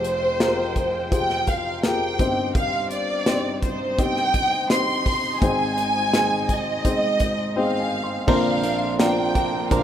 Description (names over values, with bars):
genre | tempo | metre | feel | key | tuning
piano-driven pop | 84 BPM | 4/4 | straight | unclear | A4 = 439 Hz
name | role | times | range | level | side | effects
warm studio violin section | melody | 0.0-9.8 s | C5 to C6 | -23 LUFS | right 1 dB | none
dark upright piano | accompaniment | 0.0-9.8 s | F1 to C6 | -25 LUFS | left 3 dB | none
warm studio string section | sustained chords | 0.0-9.8 s | F2 to G5 | -35 LUFS | right 1 dB | none
modern studio drum kit | drums | 0.0-9.8 s | crash cymbal, hi-hat, kick drum, snare drum | -24 LUFS | equal | none
direct-recorded clean electric guitar | riff | 8.3-9.8 s | Bb2 to Bb4 | -24 LUFS | right 8 dB | phaser
room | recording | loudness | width
light reverb, small room ambience | rough home demo mix | -19 LUFS | side -10 dB against mid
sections
0.0-8.3 A section; 8.3-9.8 B section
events
upright piano fill 7.2-8.3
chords
0.0 Fmadd9; 2.2 Cm/G; 5.4 Ab; 8.3 Bbadd9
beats
0.40 1.12 1.83 | 2.55 3.27 3.98 4.70 | 5.42 6.13 6.85 7.56 | 8.28 8.99 9.71